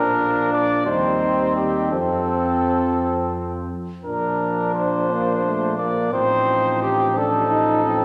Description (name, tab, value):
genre	classical, brass quintet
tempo	58 BPM (dotted quarters)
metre	6/8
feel	straight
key	Bb major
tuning	A4 = 441 Hz
part	warm cornet	melody	0.0-8.0 s	G4 to D5	-24 LUFS	equal	none
part	warm trumpet	second line	0.0-8.0 s	C4 to Eb4	-30 LUFS	equal	none
part	warm French horn	accompaniment	0.0-8.0 s	A3 to Eb4	-26 LUFS	equal	none
part	warm trombone	accompaniment	0.0-8.0 s	F3 to G3	-32 LUFS	equal	none
part	mellow tuba	bass	0.0-8.0 s	A1 to F2	-31 LUFS	equal	none
room	wet scoring stage reverb, RT60 1.8 s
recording	none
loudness	-21 LUFS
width	mono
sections	0.0-8.0 A section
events	none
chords	0.0 Bb; 0.9 Cm/Eb; 1.9 F; 4.1 Bb; 6.1 F7/A